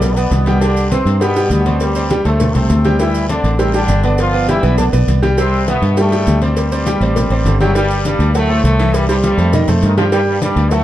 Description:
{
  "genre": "latin, salsa",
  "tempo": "202 BPM",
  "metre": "4/4",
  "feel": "straight",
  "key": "G major",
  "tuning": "A4 = 444 Hz",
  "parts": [
    { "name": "bright trombone section", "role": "melody", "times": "0.0-10.8 s", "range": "F#2 to F4", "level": "-19 LUFS", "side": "left 1 dB", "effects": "none" },
    { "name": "bright concert grand piano", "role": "accompaniment", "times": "0.0-10.8 s", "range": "B2 to G5", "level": "-17 LUFS", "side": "right 1 dB", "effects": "none" },
    { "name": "fingered electric bass", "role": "bass", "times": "0.0-10.8 s", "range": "G1 to G2", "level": "-15 LUFS", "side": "equal", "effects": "none" },
    { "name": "congas", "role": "percussion", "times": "0.0-10.8 s", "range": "none", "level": "-23 LUFS", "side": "left 2 dB", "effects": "none" },
    { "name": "cowbell", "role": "percussion", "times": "0.0-10.8 s", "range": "none", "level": "-26 LUFS", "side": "left 2 dB", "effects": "none" },
    { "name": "guiro", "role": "percussion", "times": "0.0-10.8 s", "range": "none", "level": "-36 LUFS", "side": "left 5 dB", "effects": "none" },
    { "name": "maracas", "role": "percussion", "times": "0.0-10.8 s", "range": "none", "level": "-34 LUFS", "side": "right 6 dB", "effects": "none" }
  ],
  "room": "moderate studio reverb, RT60 1.0 s",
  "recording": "dark, warm production",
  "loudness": "-12 LUFS",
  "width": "side -13 dB against mid",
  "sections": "0.0-7.8 A section; 7.8-10.8 B section",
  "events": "none",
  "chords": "0.0 G; 0.6 C5; 1.8 D7sus4; 2.4 D5; 3.0 D7sus4; 4.2 G7; 5.4 Cmaj7; 6.6 D7sus4; 7.8 G5; 8.3 D7; 8.9 C; 9.5 F7; 10.1 G5",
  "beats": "0.02 0.32 | 0.61 0.91 1.21 1.51 | 1.81 2.10 2.40 2.70 | 3.00 3.30 3.59 3.89 | 4.19 4.49 4.78 5.08 | 5.38 5.67 5.97 6.27 | 6.57 6.86 7.16 7.46 | 7.75 8.05 8.35 8.64 | 8.94 9.24 9.53 9.83 | 10.12 10.42 10.72"
}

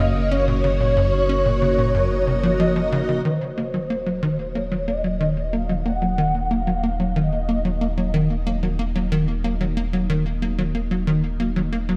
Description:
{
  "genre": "ambient, sequencer-driven space music",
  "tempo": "92 BPM",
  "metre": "4/4",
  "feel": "straight",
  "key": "unclear",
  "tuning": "A4 = 440 Hz",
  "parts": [
    { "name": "expressive synth lead", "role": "melody", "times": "0.0-8.1 s", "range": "C5 to Gb5", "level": "-27 LUFS", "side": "equal", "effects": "ensemble chorus, tape echo" },
    { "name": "string machine, full ensemble", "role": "sustained chords", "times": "0.0-12.0 s", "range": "Bb3 to Eb5", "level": "-32 LUFS", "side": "equal", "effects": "ensemble chorus" },
    { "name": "tight sequencer bass", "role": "riff", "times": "0.0-12.0 s", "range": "Gb2 to Db4", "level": "-25 LUFS", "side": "equal", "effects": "lush chorus, tape echo" },
    { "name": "warm sub bass", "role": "bass", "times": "0.0-12.0 s", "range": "Eb1 to Gb1", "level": "-28 LUFS", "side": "equal", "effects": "none" }
  ],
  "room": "moderate echo chamber reverb, RT60 2.3 s",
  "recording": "echo-heavy mix",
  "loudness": "-22 LUFS",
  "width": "mono",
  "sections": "0.0-3.2 A section; 3.2-12.0 B section",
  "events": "none",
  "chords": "0.0 Gb6; 3.2 Ebm",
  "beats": "| 0.64 1.29 1.94 2.60 | 3.25 3.90 4.55 5.20 | 5.86 6.51 7.16 7.81 | 8.46 9.12 9.77 10.42 | 11.07 11.73"
}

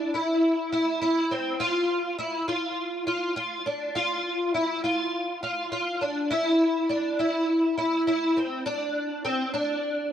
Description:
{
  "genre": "dream pop",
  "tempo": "102 BPM",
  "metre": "4/4",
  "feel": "straight",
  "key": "unclear",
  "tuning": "A4 = 439 Hz",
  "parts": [
    { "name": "fingerpicked twelve-string acoustic guitar", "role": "solo", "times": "0.0-10.1 s", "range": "C4 to F4", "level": "-24 LUFS", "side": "equal", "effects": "ensemble chorus, analog delay" }
  ],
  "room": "light reverb",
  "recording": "dry, gritty hardware recording",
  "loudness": "-24 LUFS",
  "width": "side -10 dB against mid",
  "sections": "0.0-6.3 A section; 6.3-10.1 B section",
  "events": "none",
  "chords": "none",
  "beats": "0.43 1.01 | 1.60 2.19 2.78 3.37 | 3.96 4.54 5.13 5.72 | 6.31 6.90 7.48 8.07 | 8.66 9.25 9.84"
}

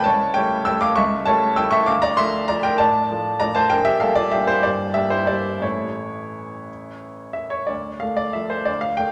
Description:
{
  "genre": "classical, piano waltz",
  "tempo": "171-209 BPM",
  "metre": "3/4",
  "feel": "rubato",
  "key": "D minor",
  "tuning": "A4 = 439 Hz",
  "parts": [
    { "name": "clear grand piano", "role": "solo", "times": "0.0-9.1 s", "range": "G1 to E6", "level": "-21 LUFS", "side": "equal", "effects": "none" }
  ],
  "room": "wet large studio reverb, RT60 1.5 s",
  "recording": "none",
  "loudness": "-20 LUFS",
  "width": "mono",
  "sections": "0.0-7.7 A section; 7.7-9.1 B section",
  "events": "none",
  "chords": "0.1 A7/C#; 1.9 Dm; 3.7 Gm/Bb; 4.6 Gm; 5.6 A; 7.7 Dm",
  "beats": "| 0.07 0.36 0.68 | 0.98 1.27 1.58 | 1.89 2.19 2.50 | 2.80 3.11 3.42 | 3.72 4.02 4.33 | 4.64 4.96 5.29 | 5.64 5.98 6.33 | 6.67 7.02 7.36 | 7.69 8.02 8.36 | 8.68 9.00"
}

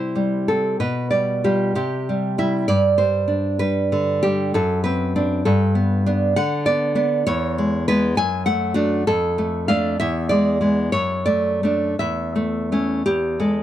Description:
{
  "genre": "romantic piece for solo classical guitar",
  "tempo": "55-69 BPM (dotted quarters)",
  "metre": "6/8",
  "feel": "rubato",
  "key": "unclear",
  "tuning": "A4 = 440 Hz",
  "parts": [
    { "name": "nylon-string guitar", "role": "solo", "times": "0.0-13.6 s", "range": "E2 to G#5", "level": "-18 LUFS", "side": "equal", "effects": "none" }
  ],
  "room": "little or no reverb",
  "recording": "dry, close 1970s-style studio recording",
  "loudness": "-18 LUFS",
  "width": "side -12 dB against mid",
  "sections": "0.0-13.6 A section",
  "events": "none",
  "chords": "0.0 C; 0.8 G7/B; 1.8 C; 2.7 G; 4.5 D7/F#; 5.5 G; 6.4 Bm/D; 7.3 E; 8.2 D/F#; 9.1 Dm/F; 10.0 E; 10.9 D/F#; 12.0 A/E; 13.0 E",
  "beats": "| 0.80 1.78 | 2.69 3.61 | 4.55 5.46 | 6.36 7.26 | 8.16 9.05 | 9.98 10.92 | 11.97 13.03"
}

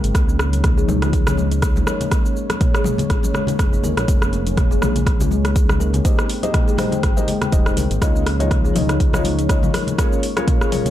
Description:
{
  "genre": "afro house",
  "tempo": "122 BPM",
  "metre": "4/4",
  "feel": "swing 56% on 16ths",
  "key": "Bb dorian",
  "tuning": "A4 = 440 Hz",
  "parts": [
    { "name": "dark analog pad", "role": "sustained chords", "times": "0.0-10.9 s", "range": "F3 to G5", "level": "-27 LUFS", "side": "left 1 dB", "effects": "chorus, sidechain pumping" },
    { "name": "kalimba", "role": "arpeggios", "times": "0.0-10.8 s", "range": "Ab3 to Bb4", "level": "-25 LUFS", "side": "left 2 dB", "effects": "sidechain pumping, low-pass filter, ping-pong delay" },
    { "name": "smooth synth bass", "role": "bass", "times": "0.0-9.7 s", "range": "Eb1 to Eb2", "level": "-21 LUFS", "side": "equal", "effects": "sidechain pumping" },
    { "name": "deep house drum kit", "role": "drums", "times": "0.0-10.9 s", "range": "cabasa, hi-hat, rim click, toms", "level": "-25 LUFS", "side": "equal", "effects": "none" },
    { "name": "electronic kick drum", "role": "drums", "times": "0.1-10.6 s", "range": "none", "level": "-18 LUFS", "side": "equal", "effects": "none" },
    { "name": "congas", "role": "percussion", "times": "0.5-10.9 s", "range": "none", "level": "-26 LUFS", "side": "left 3 dB", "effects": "none" },
    { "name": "felt-muted upright piano", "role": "stabs", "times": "6.0-10.9 s", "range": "Db4 to Eb5", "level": "-25 LUFS", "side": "left 3 dB", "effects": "sidechain pumping, ping-pong delay" }
  ],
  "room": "light reverb, digital ambience",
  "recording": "dark, warm production",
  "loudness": "-16 LUFS",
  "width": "side -12 dB against mid",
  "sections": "0.0-10.9 A section",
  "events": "none",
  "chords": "0.1 Dbadd9; 2.1 Bbm7; 6.0 Abmaj7; 8.0 Dbadd9; 10.0 Bbm7",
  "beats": "| 0.15 0.64 1.13 1.62 | 2.12 2.61 3.10 3.59 | 4.08 4.57 5.07 5.56 | 6.05 6.54 7.03 7.53 | 8.02 8.51 9.00 9.49 | 9.98 10.48"
}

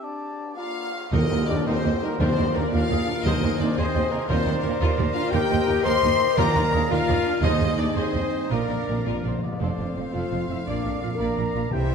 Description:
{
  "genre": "cinematic, heroic adventure film score",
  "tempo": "114 BPM (dotted quarters)",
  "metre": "6/8",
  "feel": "straight",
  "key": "unclear",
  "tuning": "A4 = 440 Hz",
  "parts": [
    { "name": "mellow clarinet", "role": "second line", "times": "0.0-11.9 s", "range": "F4 to C5", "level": "-36 LUFS", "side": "equal", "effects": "none" },
    { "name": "silver concert flute", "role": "second line", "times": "0.0-11.9 s", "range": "D5 to Bb5", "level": "-38 LUFS", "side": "left 3 dB", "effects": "none" },
    { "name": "warm cor anglais", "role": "second line", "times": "0.0-11.9 s", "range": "F4 to Eb5", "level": "-35 LUFS", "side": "right 2 dB", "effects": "none" },
    { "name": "dark French horn section", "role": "sustained chords", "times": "0.0-11.9 s", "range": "Bb3 to C5", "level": "-28 LUFS", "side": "left 6 dB", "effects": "none" },
    { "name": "clear studio violin section", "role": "melody", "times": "0.6-11.9 s", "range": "Bb4 to C6", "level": "-32 LUFS", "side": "left 3 dB", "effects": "none" },
    { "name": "warm trumpet section", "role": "stabs", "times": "0.6-11.9 s", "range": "Bb4 to C6", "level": "-32 LUFS", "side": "equal", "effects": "none" },
    { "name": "rich symphonic violin section", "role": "second line", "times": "1.1-11.9 s", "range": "C4 to Bb5", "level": "-38 LUFS", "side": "left 4 dB", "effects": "none" },
    { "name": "rich symphonic viola section", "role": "accompaniment", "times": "1.1-11.9 s", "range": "E3 to Eb5", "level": "-34 LUFS", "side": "right 3 dB", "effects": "none" },
    { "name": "clear symphonic double bass section", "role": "bass", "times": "1.1-11.9 s", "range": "F1 to Eb2", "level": "-27 LUFS", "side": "right 3 dB", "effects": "none" },
    { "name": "rich symphonic cello section", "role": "bass", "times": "1.1-11.9 s", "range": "Eb2 to C3", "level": "-30 LUFS", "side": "right 3 dB", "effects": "none" },
    { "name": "tam-tam", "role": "percussion", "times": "1.1-2.5 s", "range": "none", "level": "-36 LUFS", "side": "left 3 dB", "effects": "none" },
    { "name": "timpani", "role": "percussion", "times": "1.1-9.6, 11.7-11.9 s", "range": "Bb2 to Eb3", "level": "-29 LUFS", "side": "left 1 dB", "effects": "none" },
    { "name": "mellow trombone section", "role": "sustained chords", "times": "1.5-11.9 s", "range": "F2 to E4", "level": "-34 LUFS", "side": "right 4 dB", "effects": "none" }
  ],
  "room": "wet scoring stage reverb, RT60 1.6 s",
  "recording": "dark, warm production",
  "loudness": "-21 LUFS",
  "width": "side -6 dB against mid",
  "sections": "0.0-1.1 A section; 1.1-9.6 B section; 9.6-11.9 C section",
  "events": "band accent 1.1-1.5; timpani fill 8.5-9.6",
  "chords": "0.0 D5; 0.6 Bb; 1.1 Eb; 2.2 Bb/Eb; 3.2 Ab/Eb; 4.3 Bb/Eb; 5.3 Eb; 6.4 Bb/Eb; 7.4 Ab/Eb; 8.5 Bb; 9.6 F; 10.7 Bb",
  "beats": "| 0.03 0.57 | 1.12 1.66 | 2.19 2.72 | 3.25 3.77 | 4.29 4.81 | 5.33 5.86 | 6.39 6.91 | 7.44 7.97 | 8.52 9.06 | 9.61 10.14 | 10.67 11.19 | 11.72"
}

